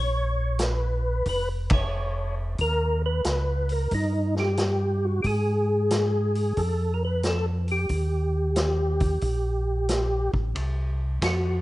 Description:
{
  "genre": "soul jazz organ trio",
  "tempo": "90 BPM",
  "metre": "4/4",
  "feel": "swing 67% on 8ths",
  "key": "unclear",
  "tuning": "A4 = 440 Hz",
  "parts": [
    { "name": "percussive tonewheel organ", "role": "melody", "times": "0.0-11.6 s", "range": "Eb4 to Db5", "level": "-27 LUFS", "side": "equal", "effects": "slow rotary speaker, chorus vibrato" },
    { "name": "mellow tonewheel organ", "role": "bass", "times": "0.0-11.6 s", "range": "F1 to Ab2", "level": "-26 LUFS", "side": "equal", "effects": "chorus vibrato, slow rotary speaker" },
    { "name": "vintage drum kit", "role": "drums", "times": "0.6-11.4 s", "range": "hi-hat, kick drum, ride cymbal, snare drum", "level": "-29 LUFS", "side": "equal", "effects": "none" }
  ],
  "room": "light reverb, small room reverb",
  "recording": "rough home demo mix, nothing above 10.7 kHz",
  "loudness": "-23 LUFS",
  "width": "side -17 dB against mid",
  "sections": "0.0-10.6 A section; 10.6-11.6 B section",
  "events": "band accent 1.6-1.9; tonewheel organ solo 10.6-11.6",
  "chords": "0.0 Bbm; 2.6 Eb7; 5.3 N.C.; 6.6 Fadd9; 7.9 Eb; 10.6 C(b5, no3)"
}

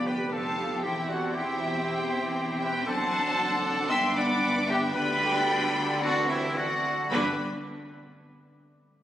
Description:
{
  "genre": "classical, dramatic, fast romantic movement for symphony orchestra",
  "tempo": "106-120 BPM",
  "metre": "4/4",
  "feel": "rubato",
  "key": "G major",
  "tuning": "A4 = 441 Hz",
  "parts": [
    { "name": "bright clarinet", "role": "second line", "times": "0.0-7.4 s", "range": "E4 to E5", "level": "-33 LUFS", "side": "equal", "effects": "none" },
    { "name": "bright small flute group", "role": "second line", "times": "0.0-7.4 s", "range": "G4 to G5", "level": "-35 LUFS", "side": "left 1 dB", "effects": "none" },
    { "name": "dark symphonic violin section", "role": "second line", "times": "0.0-7.4 s", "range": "B4 to C6", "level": "-34 LUFS", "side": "left 1 dB", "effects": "none" },
    { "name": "clear symphonic viola section", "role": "accompaniment", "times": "0.0-7.4 s", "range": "D3 to G4", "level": "-33 LUFS", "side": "right 1 dB", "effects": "none" },
    { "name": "mellow French horn section", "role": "sustained chords", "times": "0.0-7.4 s", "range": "D3 to G4", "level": "-37 LUFS", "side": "left 1 dB", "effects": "none" },
    { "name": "concert harp", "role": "arpeggios", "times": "0.0-7.4 s", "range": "E2 to D5", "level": "-41 LUFS", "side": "left 3 dB", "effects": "none" },
    { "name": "clear trumpet", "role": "stabs", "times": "0.0-7.4 s", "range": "E4 to E5", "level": "-32 LUFS", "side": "right 1 dB", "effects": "none" },
    { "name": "rich studio double bass section", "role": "bass", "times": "0.0-7.4 s", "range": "E1 to D2", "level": "-40 LUFS", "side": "right 1 dB", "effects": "none" },
    { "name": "rich symphonic cello section", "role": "bass", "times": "0.0-7.4 s", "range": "E2 to D3", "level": "-37 LUFS", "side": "right 1 dB", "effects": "none" },
    { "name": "warm symphonic violin section", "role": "melody", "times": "0.1-7.4 s", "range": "E5 to E6", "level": "-33 LUFS", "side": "left 2 dB", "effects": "none" }
  ],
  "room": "wet concert hall reverb, RT60 2.1 s",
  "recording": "recorded on a phone in the room, studio ambience",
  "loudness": "-24 LUFS",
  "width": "side -12 dB against mid",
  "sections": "0.0-7.1 A section; 7.1-9.0 B section",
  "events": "none",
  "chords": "0.0 G7/F; 0.8 C/E; 2.9 D7/F#; 3.9 G; 5.0 G/D; 6.0 D9; 7.1 G"
}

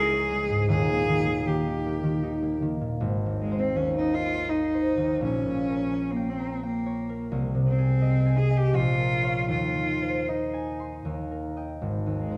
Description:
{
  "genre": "classical, romantic duo for cello and harp",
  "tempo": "76-88 BPM",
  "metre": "3/4",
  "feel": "rubato",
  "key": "Ab major",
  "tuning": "A4 = 439 Hz",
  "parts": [
    { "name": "clear cello", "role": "melody", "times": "0.0-12.4 s", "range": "Ab3 to Ab4", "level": "-30 LUFS", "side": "equal", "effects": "none" },
    { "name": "concert harp", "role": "accompaniment", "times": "0.0-12.4 s", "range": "Eb1 to C6", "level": "-28 LUFS", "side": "equal", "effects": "none" }
  ],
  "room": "wet recital hall reverb, RT60 1.3 s",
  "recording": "dark, warm production",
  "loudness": "-26 LUFS",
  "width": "mono",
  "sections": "0.0-3.0 A section; 3.0-12.4 B section",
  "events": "none",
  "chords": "0.0 Dbm; 0.7 Eb; 3.0 Ab; 5.2 Gdim/Bb; 7.3 Ab/C; 8.8 Bbm; 9.5 Ab/Eb; 11.1 Eb; 11.8 Ab5"
}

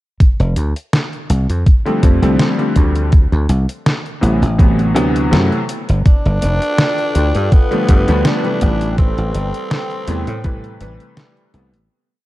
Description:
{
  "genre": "vaporwave",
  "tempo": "82 BPM",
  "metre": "4/4",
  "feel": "swing 54% on 16ths",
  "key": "F lydian",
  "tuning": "A4 = 440 Hz",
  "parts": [
    { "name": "dry thumbed slap bass", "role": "bass", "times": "0.2-11.9 s", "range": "F1 to A2", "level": "-16 LUFS", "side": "equal", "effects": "none" },
    { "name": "detuned 8-bit digital drum machine", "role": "drums", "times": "0.2-11.9 s", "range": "hi-hat, snare drum", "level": "-19 LUFS", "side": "equal", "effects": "studio reverb" },
    { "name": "electronic kick drum", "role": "drums", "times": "0.2-10.6 s", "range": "none", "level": "-10 LUFS", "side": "equal", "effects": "studio reverb" },
    { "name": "clear electric grand piano", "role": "accompaniment", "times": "1.9-11.7 s", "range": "C3 to B4", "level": "-19 LUFS", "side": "left 1 dB", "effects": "wide subtle chorus, tape echo" },
    { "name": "growling tenor saxophone", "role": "melody", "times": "6.1-11.1 s", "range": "B3 to D4", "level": "-22 LUFS", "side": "equal", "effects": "tape echo" },
    { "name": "warbly tape-like pad", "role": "sustained chords", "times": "6.4-11.9 s", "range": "F4 to G5", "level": "-27 LUFS", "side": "equal", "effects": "chorus, built-in reverb" }
  ],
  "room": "light reverb, digital ambience",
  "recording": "dark, warm production",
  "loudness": "-13 LUFS",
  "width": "side -17 dB against mid",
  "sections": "0.2-11.9 groove",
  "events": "fade-out 8.0-11.9",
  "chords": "0.2 F69; 3.1 D13; 5.7 G9; 8.6 Am9"
}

